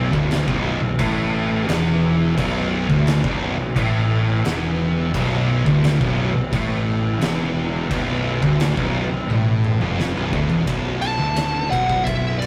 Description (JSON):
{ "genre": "stoner and doom metal", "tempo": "87 BPM", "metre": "4/4", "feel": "straight", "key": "B minor", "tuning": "A4 = 440 Hz", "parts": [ { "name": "mellow tonewheel organ", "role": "sustained chords", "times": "0.0-12.5 s", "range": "B3 to B4", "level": "-39 LUFS", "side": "equal", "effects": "none" }, { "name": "distorted electric guitar", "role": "riff", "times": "0.0-10.7 s", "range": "B1 to A2", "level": "-30 LUFS", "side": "equal", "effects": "none" }, { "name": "thick fuzz guitar", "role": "riff", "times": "0.0-12.5 s", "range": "B1 to A2", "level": "-25 LUFS", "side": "equal", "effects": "distortion" }, { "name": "thick fuzz guitar", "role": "riff", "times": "0.0-12.5 s", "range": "B1 to A2", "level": "-27 LUFS", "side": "equal", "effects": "distortion" }, { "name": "fuzz picked electric bass", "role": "bass", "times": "0.0-12.5 s", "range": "B0 to A1", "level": "-29 LUFS", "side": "equal", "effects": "overdrive" }, { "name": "oversized low-tuned drum kit", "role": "drums", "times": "0.1-12.5 s", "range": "crash cymbal, kick drum, ride cymbal, snare drum, toms", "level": "-28 LUFS", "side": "equal", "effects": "none" }, { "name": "fuzz lead guitar", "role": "melody", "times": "11.0-12.5 s", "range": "D5 to A5", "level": "-24 LUFS", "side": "equal", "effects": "distortion" } ], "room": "moderate stone room reverb, RT60 1.3 s", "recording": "rough rehearsal-room recording, warm saturation", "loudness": "-20 LUFS", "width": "mono", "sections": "0.0-10.7 A section; 10.7-12.5 B section", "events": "drum fill 9.3-10.7", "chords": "0.0 Bm" }